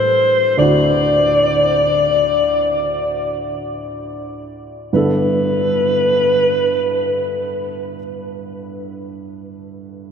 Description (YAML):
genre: jazz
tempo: free time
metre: none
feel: none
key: G major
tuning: A4 = 441 Hz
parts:
  - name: breathy alto saxophone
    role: melody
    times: 0.0-7.9 s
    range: B4 to D5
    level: -16 LUFS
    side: left 1 dB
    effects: none
  - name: dark baby grand piano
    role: accompaniment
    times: 0.0-10.1 s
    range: D2 to A4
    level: -22 LUFS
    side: right 2 dB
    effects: none
room: wet cathedral reverb, RT60 6.1 s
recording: in a vast, echoing space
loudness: -14 LUFS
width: side -7 dB against mid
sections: 0.0-4.9 A section; 4.9-9.8 B section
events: slowing down 0.0-4.9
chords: 0.0 Am7; 0.6 D9; 4.9 G69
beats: free time